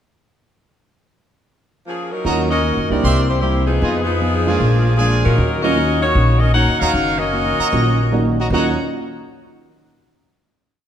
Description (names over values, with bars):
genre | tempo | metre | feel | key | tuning
jazz, big band swing | 153 BPM | 4/4 | swing 66% on 8ths | Eb minor | A4 = 439 Hz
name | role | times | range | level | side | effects
bright saxophone section | melody | 1.9-8.8 s | F3 to Gb5 | -19 LUFS | left 1 dB | none
hollow-body jazz guitar | accompaniment | 2.2-8.7 s | Bb2 to Ab4 | -23 LUFS | left 2 dB | none
warm grand piano | accompaniment | 2.2-8.8 s | Gb3 to F4 | -24 LUFS | right 5 dB | none
upright bass | bass | 2.2-8.7 s | Gb1 to Bb2 | -18 LUFS | equal | none
clear trumpet section | stabs | 2.3-8.7 s | F4 to C6 | -25 LUFS | right 2 dB | none
room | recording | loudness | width
wet scoring stage reverb, RT60 1.7 s | none | -14 LUFS | side -9 dB against mid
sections
0.7-2.2 pickup bar; 2.2-8.5 A section; 8.5-10.1 final chord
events
none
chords
0.7 Eb7(no3) (rootless); 2.2 Ebm7; 3.0 C7; 3.8 Fm7b5; 4.6 Bb7; 5.4 Ebm7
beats
| 0.68 1.07 1.47 1.86 | 2.25 2.64 3.03 3.42 | 3.81 4.20 4.59 4.99 | 5.38 5.77 6.16 6.55 | 6.94 7.33 7.72 8.12 | 8.51